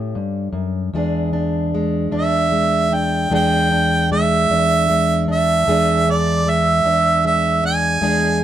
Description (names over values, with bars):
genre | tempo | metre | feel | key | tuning
acoustic country blues, solo or duo | 51 BPM (dotted quarters) | 12/8 | straight | unclear | A4 = 441 Hz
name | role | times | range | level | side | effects
fingerpicked plugged-in steel-string acoustic guitar | accompaniment | 0.0-8.4 s | E2 to G#4 | -18 LUFS | left 1 dB | none
clear harmonica | melody | 2.1-8.4 s | D5 to G#5 | -17 LUFS | right 3 dB | plate reverb
room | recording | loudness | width
moderate studio reverb, RT60 0.6 s | dark, warm production | -15 LUFS | side -11 dB against mid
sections
0.0-8.4 A section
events
none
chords
0.0 A7; 0.9 E7